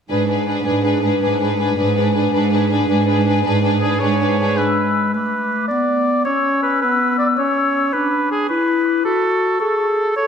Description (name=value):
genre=cinematic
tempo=108 BPM (dotted quarters)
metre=12/8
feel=straight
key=unclear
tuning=A4 = 440 Hz
part: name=warm symphonic violin section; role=melody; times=0.1-4.6 s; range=B4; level=-22 LUFS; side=left 6 dB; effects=none
part: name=warm symphonic violin section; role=second line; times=0.1-4.6 s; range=G#4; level=-25 LUFS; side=left 4 dB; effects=none
part: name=rich symphonic viola section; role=accompaniment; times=0.1-4.6 s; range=D4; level=-21 LUFS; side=right 3 dB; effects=none
part: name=clear studio cello section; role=bass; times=0.1-4.5 s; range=G#2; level=-19 LUFS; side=right 3 dB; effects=none
part: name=warm oboe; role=second line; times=3.8-10.3 s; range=G#4 to D5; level=-19 LUFS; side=right 1 dB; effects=none
part: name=clear clarinet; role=second line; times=4.6-10.3 s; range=G#3 to A4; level=-20 LUFS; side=left 2 dB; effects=none
part: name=mellow hollow small flute group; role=second line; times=4.6-10.3 s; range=B5 to E6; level=-24 LUFS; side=left 6 dB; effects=none
room=wet scoring stage reverb, RT60 1.7 s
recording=none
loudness=-15 LUFS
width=side -7 dB against mid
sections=0.1-4.6 A section; 4.6-10.3 B section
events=none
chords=0.1 G#dim; 4.6 G#dim (rootless); 9.0 F#m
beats=| 0.10 0.66 1.22 1.77 | 2.33 2.88 3.44 4.01 | 4.58 5.14 5.70 6.26 | 6.82 7.38 7.93 8.49 | 9.04 9.60 10.15